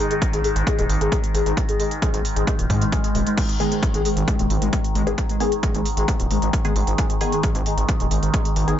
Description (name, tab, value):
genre	driving peak-time techno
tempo	133 BPM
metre	4/4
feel	straight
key	G# minor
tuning	A4 = 439 Hz
part	overdriven synth lead	riff	0.0-8.7 s	G#3	-26 LUFS	left 2 dB	distortion, phaser, ensemble chorus, sidechain pumping, dub echo
part	overtone-sweeping drone	drone	0.0-8.8 s	G#2 to D#3	-27 LUFS	right 1 dB	chorus, built-in reverb, phaser, sidechain pumping
part	techno drum kit	drums	0.1-8.8 s	crash cymbal, hi-hat	-32 LUFS	right 2 dB	none
part	electronic kick drum	drums	0.2-8.4 s	none	-22 LUFS	equal	none
part	gritty driven synth bass	bass	0.3-8.7 s	D#1 to G#2	-23 LUFS	equal	sidechain pumping
part	filtered dub chord stab	stabs	3.6-8.8 s	D#3 to G#4	-27 LUFS	left 4 dB	phaser, sidechain pumping, dub echo
room	light reverb, digital ambience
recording	nothing above 7.6 kHz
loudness	-18 LUFS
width	side -10 dB against mid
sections	0.0-8.8 A section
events	filter sweep on analog synth lead 0.0-8.8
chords	0.0 G#5